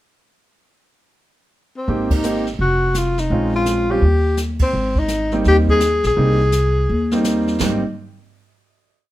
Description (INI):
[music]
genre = jazz, small-group swing and bop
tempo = 168 BPM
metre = 4/4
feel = swing 64% on 8ths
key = Ab major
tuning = A4 = 440 Hz
[part]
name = breathy tenor saxophone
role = melody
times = 1.8-7.2 s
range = C4 to Ab4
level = -19 LUFS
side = left 2 dB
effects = none
[part]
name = clear baby grand piano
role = accompaniment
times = 1.9-7.8 s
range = G3 to G4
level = -21 LUFS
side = right 2 dB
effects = none
[part]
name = upright bass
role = bass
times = 1.9-7.8 s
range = F1 to Eb2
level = -19 LUFS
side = equal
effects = none
[part]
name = jazz brush drum kit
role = drums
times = 1.9-7.9 s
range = brushed snare drum, crash cymbal, hi-hat, kick drum, ride cymbal, snare drum, toms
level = -24 LUFS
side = equal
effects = none
[sound]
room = light reverb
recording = minimal, uncompressed stereo recording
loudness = -15 LUFS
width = side -15 dB against mid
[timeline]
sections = 0.5-1.9 pickup bar; 1.9-7.6 A section; 7.6-9.0 final chord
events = band accent 2.1, 4.6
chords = 0.5 N.C.; 1.9 Abmaj9; 2.6 Ebmadd9/F (rootless); 3.3 Bbm9; 4.0 Eb; 4.7 Abmaj9